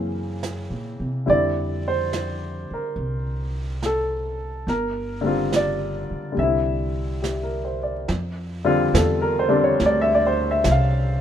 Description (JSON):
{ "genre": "jazz ballad", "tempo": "71 BPM", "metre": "4/4", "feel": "swing 68% on 8ths", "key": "F major", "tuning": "A4 = 439 Hz", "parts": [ { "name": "clear grand piano", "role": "accompaniment", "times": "0.0-11.2 s", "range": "Db3 to F5", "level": "-22 LUFS", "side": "left 1 dB", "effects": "none" }, { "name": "upright bass", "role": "bass", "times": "0.0-11.2 s", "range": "G1 to C3", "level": "-26 LUFS", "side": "right 1 dB", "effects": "none" }, { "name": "vintage brush drum kit", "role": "drums", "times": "0.4-11.2 s", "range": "brushed snare drum, hi-hat, snare drum", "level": "-28 LUFS", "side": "right 4 dB", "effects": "none" } ], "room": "little or no reverb", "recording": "minimal, uncompressed stereo recording", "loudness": "-20 LUFS", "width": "side -9 dB against mid", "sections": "0.0-8.1 A section; 8.1-11.2 B section", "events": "none", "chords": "0.0 Gb7#11; 1.3 F6; 4.7 Gm7; 6.4 C; 8.1 F5" }